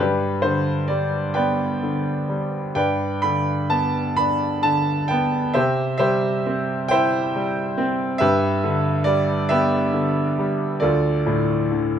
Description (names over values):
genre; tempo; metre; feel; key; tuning
classical, lyrical solo piano; 42-48 BPM (dotted quarters); 6/8; rubato; unclear; A4 = 440 Hz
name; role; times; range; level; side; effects
clear grand piano; solo; 0.0-12.0 s; D2 to B5; -19 LUFS; equal; none
room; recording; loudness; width
light reverb; close, detailed microphones; -19 LUFS; side -8 dB against mid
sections
0.0-12.0 A section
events
none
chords
0.0 G; 5.6 C; 8.2 G; 10.8 Dm